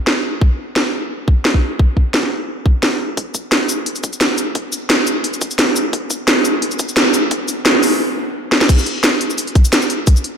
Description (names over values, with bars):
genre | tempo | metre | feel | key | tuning
drum and bass | 174 BPM | 4/4 | swing 54% on 16ths | none | none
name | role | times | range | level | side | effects
drum and bass drum kit | drums | 0.1-10.3 s | cabasa, crash cymbal, hi-hat, snare drum | -15 LUFS | equal | none
electronic kick drum | drums | 0.4-10.1 s | none | -13 LUFS | equal | high-pass filter on kick
room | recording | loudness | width
wet plate reverb, RT60 2.2 s | dreamy mix soaked in reverb | -14 LUFS | side -7 dB against mid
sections
0.0-3.2 A section; 3.2-8.7 B section; 8.7-10.4 C section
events
build-up 3.2-8.7; stop 8.0-8.7; drum fill 8.5; drop 8.7-10.4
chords
none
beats
0.07 | 0.42 0.76 1.11 1.45 | 1.79 2.14 2.48 2.83 | 3.17 3.52 3.86 4.21 | 4.55 4.90 5.24 5.59 | 5.93 6.28 6.62 6.97 | 7.31 7.66 8.00 8.35 | 8.69 9.04 9.38 9.73 | 10.07